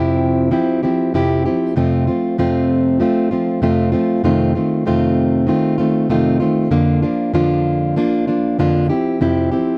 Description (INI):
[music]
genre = pop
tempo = 97 BPM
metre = 4/4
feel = straight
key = F major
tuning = A4 = 440 Hz
[part]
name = fingerpicked plugged-in steel-string acoustic guitar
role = solo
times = 0.0-9.8 s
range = F2 to G4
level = -17 LUFS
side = equal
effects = none
[sound]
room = little or no reverb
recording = dry, close 1970s-style studio recording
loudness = -17 LUFS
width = mono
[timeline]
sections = 0.0-9.8 A section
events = none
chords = 0.0 C/F; 1.8 F; 4.2 F7; 6.7 Bb/F; 8.9 C/F